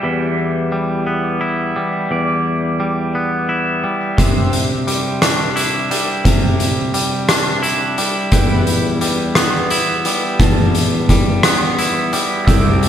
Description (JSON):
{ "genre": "post-rock", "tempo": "58 BPM (dotted quarters)", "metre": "6/8", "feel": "straight", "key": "unclear", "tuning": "A4 = 440 Hz", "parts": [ { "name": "pedal steel guitar", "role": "sustained chords", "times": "0.0-12.9 s", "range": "E3 to A5", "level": "-25 LUFS", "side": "right 1 dB", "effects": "lush chorus" }, { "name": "twangy electric guitar", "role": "arpeggios", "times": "0.0-12.9 s", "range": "E2 to E4", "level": "-18 LUFS", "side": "equal", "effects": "spring reverb, tape echo, slapback echo" }, { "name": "oversized low-tuned drum kit", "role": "drums", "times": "4.2-12.9 s", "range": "hi-hat, kick drum, rim click", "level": "-15 LUFS", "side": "equal", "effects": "none" }, { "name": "glockenspiel with hard plastic mallets", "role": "arpeggios", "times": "12.5-12.9 s", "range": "E6", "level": "-23 LUFS", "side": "right 7 dB", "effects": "tape echo" }, { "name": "fuzz fingered electric bass", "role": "bass", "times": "12.5-12.9 s", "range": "C2", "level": "-17 LUFS", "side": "equal", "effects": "overdrive" } ], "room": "wet concert hall reverb, RT60 2.4 s", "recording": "big arena sound", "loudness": "-14 LUFS", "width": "side -9 dB against mid", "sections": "0.0-4.2 A section; 4.2-12.9 A section", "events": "none", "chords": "0.0 Em; 4.2 Cadd9; 8.3 Em", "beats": "| 0.04 1.07 | 2.11 3.14 | 4.18 5.21 | 6.25 7.29 | 8.32 9.36 | 10.40 11.44 | 12.48" }